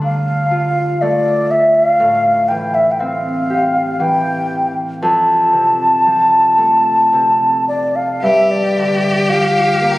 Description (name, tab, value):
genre	celtic folk, Celtic slow air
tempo	53-61 BPM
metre	3/4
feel	rubato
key	unclear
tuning	A4 = 440 Hz
part	mellow wooden flute	melody	0.0-10.0 s	D5 to A5	-13 LUFS	equal	none
part	concert harp	accompaniment	0.0-10.0 s	F2 to G4	-20 LUFS	equal	none
part	bright cello	second line	8.2-10.0 s	G4	-17 LUFS	equal	none
room	moderate church reverb, RT60 3.0 s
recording	recorded on a phone in the room, studio reverb, compression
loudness	-12 LUFS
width	side -18 dB against mid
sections	0.0-8.2 A section; 8.2-10.0 B section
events	none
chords	0.0 Dm; 2.0 Am7; 5.0 F; 8.2 G7(no3)